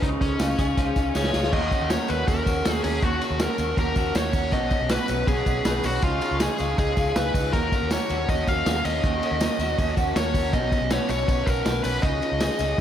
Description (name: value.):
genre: jangly indie pop.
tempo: 160 BPM.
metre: 4/4.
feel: straight.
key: Eb minor.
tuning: A4 = 440 Hz.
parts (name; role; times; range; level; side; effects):
dark smooth lead guitar; melody; 0.0-12.8 s; Db4 to F5; -27 LUFS; left 2 dB; overdrive, tape echo.
fingerpicked twelve-string acoustic guitar; accompaniment; 0.0-12.8 s; B2 to Gb4; -31 LUFS; right 7 dB; analog chorus.
electric guitar through a small old amp; arpeggios; 0.0-12.8 s; B2 to B4; -29 LUFS; left 2 dB; ensemble chorus.
vintage muted fingered electric bass; bass; 0.0-12.8 s; B1 to Eb2; -29 LUFS; equal; none.
vintage drum kit; drums; 0.0-12.8 s; crash cymbal, hi-hat, kick drum, ride cymbal, snare drum; -26 LUFS; equal; none.
tambourine; percussion; 0.4-12.8 s; none; -42 LUFS; left 6 dB; none.
room: moderate lush hall reverb, RT60 1.8 s, small room ambience.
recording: dreamy mix soaked in reverb.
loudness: -21 LUFS.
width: side -10 dB against mid.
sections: 0.0-1.5 A section; 1.5-12.8 B section.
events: drum fill 1.1-1.5.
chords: 0.0 Dbadd9; 1.5 Ebm7; 4.5 Badd9; 6.0 Dbadd9; 7.5 Ebm7; 10.5 Badd9; 12.0 Dbadd9.